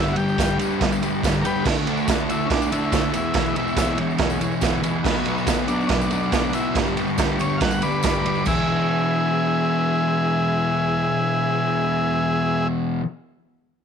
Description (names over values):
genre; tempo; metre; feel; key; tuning
garage rock duo or trio; 140 BPM; 4/4; straight; E mixolydian; A4 = 440 Hz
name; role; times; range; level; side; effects
overdriven combo organ; melody; 0.0-12.7 s; C#4 to F#5; -24 LUFS; left 1 dB; none
overdriven combo organ; sustained chords; 0.0-12.7 s; D4 to C#5; -33 LUFS; left 1 dB; none
fuzz guitar; riff; 0.0-13.1 s; E2 to D4; -22 LUFS; left 1 dB; distortion
tambourine; percussion; 0.1-8.7 s; none; -40 LUFS; left 16 dB; none
raw garage drum kit; drums; 0.2-8.6 s; crash cymbal, kick drum, ride cymbal, snare drum; -24 LUFS; right 4 dB; none
room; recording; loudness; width
light reverb, small room ambience; 1960s-style stereo; -19 LUFS; side -7 dB against mid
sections
0.0-8.5 A section; 8.5-11.9 B section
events
none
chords
0.0 G; 1.7 D; 3.1 E; 5.0 B; 6.8 G; 8.5 E